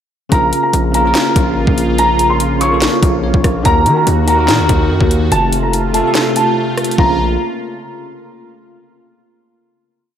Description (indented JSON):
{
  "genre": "hip hop, drill",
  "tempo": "144 BPM",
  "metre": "4/4",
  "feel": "half-time",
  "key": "Bb harmonic minor",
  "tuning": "A4 = 440 Hz",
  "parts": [
    { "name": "dark baby grand piano", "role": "melody", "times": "0.3-7.2 s", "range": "A5 to Db6", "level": "-16 LUFS", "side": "equal", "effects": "analog chorus, analog delay" },
    { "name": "bell-like tine electric piano", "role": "accompaniment", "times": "0.3-7.2 s", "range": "C3 to Db5", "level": "-18 LUFS", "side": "equal", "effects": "fast stereo tremolo" },
    { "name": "sweeping resonant pad", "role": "sustained chords", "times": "0.3-7.2 s", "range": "C3 to Gb4", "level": "-20 LUFS", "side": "equal", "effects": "chorus" },
    { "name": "distorted 808-style bass", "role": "bass", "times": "0.3-7.4 s", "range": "F1 to Eb3", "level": "-16 LUFS", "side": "equal", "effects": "distortion" },
    { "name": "drill drum kit", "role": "drums", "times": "0.3-7.1 s", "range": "handclaps, hi-hat, kick drum, rim click, snare drum", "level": "-17 LUFS", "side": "equal", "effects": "none" }
  ],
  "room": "wet plate reverb, RT60 2.3 s",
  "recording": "dreamy mix soaked in reverb",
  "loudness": "-11 LUFS",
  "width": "side -9 dB against mid",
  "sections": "0.3-7.0 hook; 7.0-8.7 final chord",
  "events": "tine electric piano fill 3.0-3.7; kick muted 6.2-7.0",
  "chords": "0.3 Bbm; 3.7 Ebm; 5.3 F; 7.0 Bbm"
}